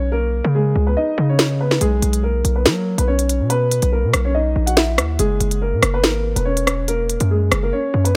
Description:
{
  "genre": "hip hop, drill",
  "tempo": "142 BPM",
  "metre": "4/4",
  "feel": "half-time",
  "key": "unclear",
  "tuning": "A4 = 440 Hz",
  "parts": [
    { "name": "dark concert grand piano", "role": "melody", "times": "0.0-8.2 s", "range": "G#3 to F#5", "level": "-23 LUFS", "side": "equal", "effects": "none" },
    { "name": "hard-hitting 808-style bass", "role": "bass", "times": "0.0-8.2 s", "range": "E1 to F#3", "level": "-21 LUFS", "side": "equal", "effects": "none" },
    { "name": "drill drum kit", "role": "drums", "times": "1.4-8.1 s", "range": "hi-hat, rim click, snare drum", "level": "-20 LUFS", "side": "equal", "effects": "none" }
  ],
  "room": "little or no reverb",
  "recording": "none",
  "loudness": "-18 LUFS",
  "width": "mono",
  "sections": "0.0-8.2 A section",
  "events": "break 0.0-1.8",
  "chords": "0.0 C#7(no3); 1.8 N.C.; 5.2 F#"
}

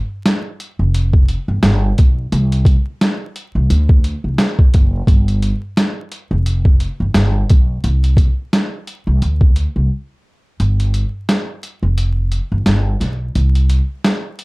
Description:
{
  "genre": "hip hop, boom-bap hip-hop",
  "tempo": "87 BPM",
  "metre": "4/4",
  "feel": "swing 56% on 16ths",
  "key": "unclear",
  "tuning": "A4 = 441 Hz",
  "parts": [
    { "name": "boom bap sampler-style drum kit", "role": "drums", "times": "0.3-14.4 s", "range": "hi-hat, kick drum, snare drum", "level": "-13 LUFS", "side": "equal", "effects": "none" },
    { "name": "upright bass", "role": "bass", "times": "0.8-13.8 s", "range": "F1 to D2", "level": "-15 LUFS", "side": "equal", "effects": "none" }
  ],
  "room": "little or no reverb",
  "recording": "dark, warm production, vinyl crackle",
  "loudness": "-13 LUFS",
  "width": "side -26 dB against mid",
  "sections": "0.0-10.6 A section; 10.6-14.4 B section",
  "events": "break 9.9-10.6; kick muted 10.6-14.4",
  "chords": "none"
}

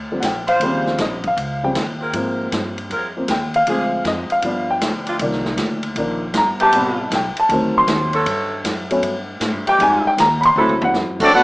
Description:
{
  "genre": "jazz, big band swing",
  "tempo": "157 BPM",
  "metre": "4/4",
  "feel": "swing 66% on 8ths",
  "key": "unclear",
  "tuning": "A4 = 440 Hz",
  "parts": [
    { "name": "upright bass", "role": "bass", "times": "0.0-11.4 s", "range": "G1 to A2", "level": "-27 LUFS", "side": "equal", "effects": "none" },
    { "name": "warm baby grand piano", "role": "accompaniment", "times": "0.1-11.3 s", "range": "C3 to C6", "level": "-18 LUFS", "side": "equal", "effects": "none" },
    { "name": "swinging big-band drum kit", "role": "drums", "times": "0.2-11.3 s", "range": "crash cymbal, hi-hat, kick drum, ride cymbal, snare drum, toms", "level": "-24 LUFS", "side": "equal", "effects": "none" },
    { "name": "bright saxophone section", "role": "sustained chords", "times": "0.5-10.7 s", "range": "C3 to C5", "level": "-21 LUFS", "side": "right 1 dB", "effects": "none" },
    { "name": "bright trumpet section", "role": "melody", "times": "11.2-11.4 s", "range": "C4 to F#5", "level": "-10 LUFS", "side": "equal", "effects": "none" },
    { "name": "warm trombone section", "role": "second line", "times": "11.2-11.4 s", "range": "F#3 to F#4", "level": "-17 LUFS", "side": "right 1 dB", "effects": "none" }
  ],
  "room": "moderate club reverb, RT60 0.6 s",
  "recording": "small speaker sound",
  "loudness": "-16 LUFS",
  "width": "side -22 dB against mid",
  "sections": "0.0-11.3 A section",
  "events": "grand piano solo 0.0-11.3; drum fill 10.6-10.9",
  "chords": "0.0 Ebmaj13 (rootless); 0.6 Eb13; 2.1 Ab69; 3.7 Dm7b5; 4.4 G7; 5.2 Cm11; 6.7 Am9; 7.5 D7b9; 8.3 Gmaj9#11; 9.8 Fm9; 10.6 D7"
}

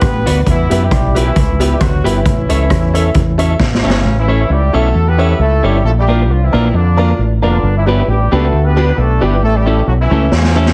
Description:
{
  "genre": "ska",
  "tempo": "134 BPM",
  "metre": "4/4",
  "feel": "swing 54% on 8ths",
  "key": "unclear",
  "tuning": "A4 = 439 Hz",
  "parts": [
    { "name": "warm horn section", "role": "melody", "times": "0.0-10.7 s", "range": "C#3 to B4", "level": "-21 LUFS", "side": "equal", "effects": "slapback echo, plate reverb" },
    { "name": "fingered electric bass", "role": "bass", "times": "0.0-10.7 s", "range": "F1 to F#2", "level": "-16 LUFS", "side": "equal", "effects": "none" },
    { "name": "street-band drum kit", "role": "drums", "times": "0.0-4.0, 10.3-10.7 s", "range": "hi-hat, kick drum, rim click, snare drum", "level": "-17 LUFS", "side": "equal", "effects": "none" },
    { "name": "clean electric guitar", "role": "accompaniment", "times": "0.3-10.7 s", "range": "A3 to C#5", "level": "-22 LUFS", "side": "equal", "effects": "slapback echo, plate reverb" },
    { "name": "honky-tonk upright piano", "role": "stabs", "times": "0.3-10.7 s", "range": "C#4 to E5", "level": "-23 LUFS", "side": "equal", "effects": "slapback echo, plate reverb" }
  ],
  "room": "light reverb",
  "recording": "heavily compressed radio sound",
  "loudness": "-13 LUFS",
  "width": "mono",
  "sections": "0.0-4.0 A section; 4.0-10.7 B section",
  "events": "drum fill 3.6-4.0, 10.3-10.7",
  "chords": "0.5 Em; 2.3 A; 5.8 Bb; 7.6 G; 9.4 A"
}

